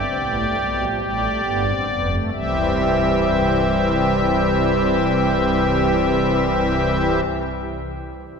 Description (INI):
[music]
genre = classical, baroque-style 4-part fugue for pipe organ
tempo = 44 BPM (dotted quarters)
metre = 12/8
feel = straight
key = C major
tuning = A4 = 440 Hz
[part]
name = pipe organ, strings celeste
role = solo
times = 0.0-7.2 s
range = C1 to E5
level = -17 LUFS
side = equal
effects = none
[sound]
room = wet church reverb, RT60 3.8 s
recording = minimal, uncompressed stereo recording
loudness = -17 LUFS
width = side -6 dB against mid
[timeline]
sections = 0.0-2.3 A section; 2.3-7.7 B section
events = slowing down 0.0-2.3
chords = 0.0 G7; 2.3 C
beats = 1.01 | 2.33 3.67 5.02 6.38